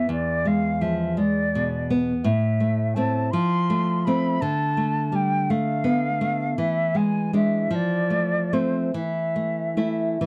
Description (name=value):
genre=romantic duo for flute and classical guitar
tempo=47-58 BPM (dotted quarters)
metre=6/8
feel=rubato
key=unclear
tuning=A4 = 439 Hz
part: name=concert flute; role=melody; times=0.0-10.2 s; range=C5 to C6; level=-29 LUFS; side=equal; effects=none
part: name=nylon-string guitar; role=accompaniment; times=0.0-10.3 s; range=E2 to E4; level=-25 LUFS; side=equal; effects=none
room=light reverb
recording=dry, close 1970s-style studio recording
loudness=-23 LUFS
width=mono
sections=0.0-10.3 A section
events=none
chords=0.1 E7; 2.3 Am; 3.3 F; 4.4 Bm7b5/D; 6.6 E7; 7.7 F; 8.9 Esus4